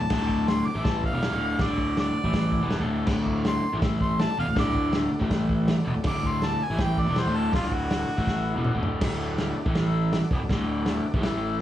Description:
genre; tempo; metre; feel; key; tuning
garage rock duo or trio; 162 BPM; 4/4; straight; D major; A4 = 440 Hz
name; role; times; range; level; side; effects
clear harmonica; melody; 0.0-8.8 s; F4 to D6; -30 LUFS; equal; overdrive
combo organ; sustained chords; 0.0-11.6 s; E4 to A5; -38 LUFS; left 1 dB; none
crunchy overdriven guitar; riff; 0.0-11.6 s; D2 to A3; -26 LUFS; left 1 dB; none
fretless electric bass; bass; 0.0-11.6 s; D1 to A1; -31 LUFS; equal; none
vintage drum kit; drums; 0.1-11.3 s; crash cymbal, hi-hat, kick drum, snare drum, toms; -28 LUFS; equal; vintage 12-bit sampler grit
room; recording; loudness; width
light reverb; studio ambience; -23 LUFS; side -12 dB against mid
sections
0.0-9.0 A section; 9.0-11.6 B section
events
harmonica solo 0.0-9.0; transistor combo organ fill 2.3-3.1; drum fill 8.3-9.0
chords
0.0 D; 0.8 A5; 1.1 D; 2.3 A5; 2.6 D; 3.7 A5; 4.3 D; 5.2 A5; 5.8 D; 6.7 A5; 7.1 D; 8.2 A5; 8.6 D; 9.7 A5; 10.2 D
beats
| 0.12 0.49 0.86 1.23 | 1.60 1.97 2.35 2.72 | 3.09 3.46 3.83 4.20 | 4.57 4.94 5.31 5.68 | 6.05 6.43 6.80 7.17 | 7.54 7.91 8.28 8.65 | 9.02 9.39 9.76 10.12 | 10.49 10.86 11.23 11.60

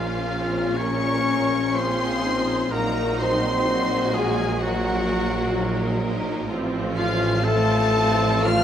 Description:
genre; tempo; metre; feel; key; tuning
classical, slow romantic movement for symphony orchestra; 54-66 BPM; 4/4; rubato; Bb minor; A4 = 437 Hz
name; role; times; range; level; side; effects
clear symphonic violin section; melody; 0.0-8.6 s; F5 to F6; -28 LUFS; left 3 dB; none
mellow hollow large flute ensemble; second line; 0.0-8.6 s; F4 to F5; -28 LUFS; left 2 dB; none
warm oboe; second line; 0.0-8.6 s; F4 to F5; -29 LUFS; right 1 dB; none
warm symphonic violin section; second line; 0.0-8.6 s; C4 to C5; -31 LUFS; left 1 dB; none
rich symphonic viola section; accompaniment; 0.0-8.6 s; F3 to Eb4; -29 LUFS; right 1 dB; none
warm French horn section; sustained chords; 0.0-8.6 s; F3 to F4; -27 LUFS; left 3 dB; none
clear tuba; bass; 0.0-8.6 s; A1 to Bb1; -31 LUFS; right 3 dB; none
rich symphonic cello section; bass; 0.0-8.6 s; A2 to Bb2; -30 LUFS; right 3 dB; none
rich symphonic double bass section; bass; 0.0-8.6 s; A1 to Bb1; -30 LUFS; right 2 dB; none
room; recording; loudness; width
wet scoring stage reverb, RT60 1.9 s; none; -20 LUFS; side -9 dB against mid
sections
0.0-8.6 A section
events
none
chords
0.0 Bbm; 2.7 Cm7b5/Bb; 6.5 F/A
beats
0.79 1.77 | 2.73 3.68 4.63 5.58 | 6.50 7.43 8.46

